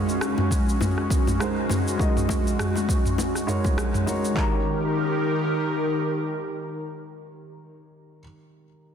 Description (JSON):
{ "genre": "sunset chillout", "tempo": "101 BPM", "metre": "4/4", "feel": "swing 56% on 16ths", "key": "unclear", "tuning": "A4 = 440 Hz", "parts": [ { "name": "dark baby grand piano", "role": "accompaniment", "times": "0.0-8.9 s", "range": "Eb3 to Bb5", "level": "-30 LUFS", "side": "moving between left 1 dB and right 5 dB", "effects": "auto-pan, ping-pong delay" }, { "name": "airy breathy pad", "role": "sustained chords", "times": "0.0-7.5 s", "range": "Eb3 to Bb4", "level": "-26 LUFS", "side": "left 1 dB", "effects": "chorus" }, { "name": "smooth R&B drum kit", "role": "drums", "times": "0.1-4.3 s", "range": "rim click, shaker, toms", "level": "-27 LUFS", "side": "equal", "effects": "small room ambience" }, { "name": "bongos", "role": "percussion", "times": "0.4-4.2 s", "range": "none", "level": "-34 LUFS", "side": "left 6 dB", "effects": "none" }, { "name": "deep house drum kit", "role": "drums", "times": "0.5-4.5 s", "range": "handclaps, kick drum", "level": "-25 LUFS", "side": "equal", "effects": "overdrive, small room ambience" } ], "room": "moderate lush hall reverb, RT60 1.9 s", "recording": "dense, heavily limited modern master", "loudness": "-22 LUFS", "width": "side -8 dB against mid", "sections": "0.0-4.4 A section; 4.4-6.7 B section", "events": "none", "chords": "0.0 Ab9sus4; 4.4 Eb", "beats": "0.21 0.80 1.40 | 1.99 2.59 3.18 3.77 | 4.37 4.96 5.56 6.15" }